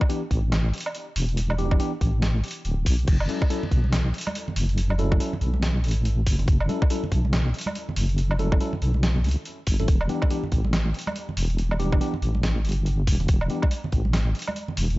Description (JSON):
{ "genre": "deep dubstep", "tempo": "141 BPM", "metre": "4/4", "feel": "swing 60% on 16ths, half-time", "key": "unclear", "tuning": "A4 = 440 Hz", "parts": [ { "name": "electronic kick drum", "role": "drums", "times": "0.0-14.0 s", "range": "none", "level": "-22 LUFS", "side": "equal", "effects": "none" }, { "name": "trip hop sampler-style drum kit", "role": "drums", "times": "0.0-15.0 s", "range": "crash cymbal, hi-hat, snare drum, woodblock", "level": "-30 LUFS", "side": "right 1 dB", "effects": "none" }, { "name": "tine electric piano", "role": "stabs", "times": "0.1-13.6 s", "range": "E3 to A4", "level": "-32 LUFS", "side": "left 1 dB", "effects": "phaser, dub echo" }, { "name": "deep soft wobble bass", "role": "bass", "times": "0.3-15.0 s", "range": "D1 to C#2", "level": "-23 LUFS", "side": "equal", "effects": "chorus, tube saturation" }, { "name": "congas", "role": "percussion", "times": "3.3-14.8 s", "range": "none", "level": "-34 LUFS", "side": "right 2 dB", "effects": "dub echo" } ], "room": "little or no reverb", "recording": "nothing above 7.7 kHz", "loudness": "-22 LUFS", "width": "side -19 dB against mid", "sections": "0.0-15.0 A section", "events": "none", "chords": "0.0 Em7; 3.1 F#m7; 9.9 Em7", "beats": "0.10 0.52 0.95 | 1.37 1.80 2.22 2.65 | 3.07 3.50 3.92 4.35 | 4.78 5.20 5.63 6.05 | 6.48 6.90 7.33 7.75 | 8.18 8.61 9.03 9.46 | 9.88 10.31 10.73 11.16 | 11.59 12.01 12.44 12.86 | 13.29 13.71 14.14 14.56" }